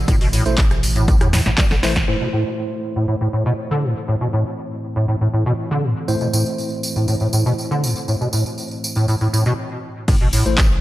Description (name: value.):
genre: acid house.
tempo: 120 BPM.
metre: 4/4.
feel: straight.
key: A minor.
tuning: A4 = 439 Hz.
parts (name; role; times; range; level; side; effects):
warbly tape-like pad; sustained chords; 0.0-10.8 s; A2 to C4; -30 LUFS; right 1 dB; chorus, built-in reverb, sidechain pumping.
saturated sub bass; bass; 0.0-2.0, 10.1-10.8 s; A1 to E2; -21 LUFS; equal; sidechain pumping.
acid bass, square; riff; 0.1-10.4 s; A2 to G3; -20 LUFS; equal; ensemble chorus, cassette tape, tape echo.
electro analog drum machine; drums; 0.1-2.1, 10.1-10.7 s; crash cymbal, handclaps, hi-hat, rim click, snare drum; -23 LUFS; equal; none.
electronic kick drum; drums; 0.1-2.1, 10.1-10.7 s; none; -17 LUFS; equal; none.
tambourine; percussion; 0.1-2.1, 6.1-10.7 s; none; -28 LUFS; right 2 dB; none.
tine electric piano; stabs; 0.5-10.5 s; A3 to C5; -27 LUFS; equal; medium stereo tremolo, tape echo.
room: light reverb.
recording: none.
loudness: -16 LUFS.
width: side -15 dB against mid.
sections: 0.0-2.1 A section; 2.1-10.1 B section.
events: drum fill 1.3-2.1; band accent 2.0; filter sweep on ambient pad 2.1-10.1; stop 9.6-10.1.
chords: 0.0 A5; 2.1 Am.